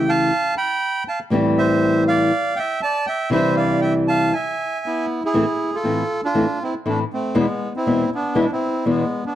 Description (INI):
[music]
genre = tango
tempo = 120 BPM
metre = 4/4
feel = rubato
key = A harmonic minor from 5.3 s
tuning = A4 = 436 Hz
[part]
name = bandoneon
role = melody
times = 0.0-9.3 s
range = G#3 to B5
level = -21 LUFS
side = right 2 dB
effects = none
[part]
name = nylon-string guitar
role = accompaniment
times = 0.0-9.0 s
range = E2 to G4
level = -19 LUFS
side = left 1 dB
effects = none
[sound]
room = moderate large studio reverb, RT60 1.1 s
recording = dark, warm production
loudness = -18 LUFS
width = side -12 dB against mid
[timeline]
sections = 0.0-5.3 A section; 5.3-9.3 B section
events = none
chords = 0.3 Fadd9; 1.3 Am7; 2.3 Dmadd9; 3.3 Cadd9; 4.3 E; 5.3 Am; 7.4 E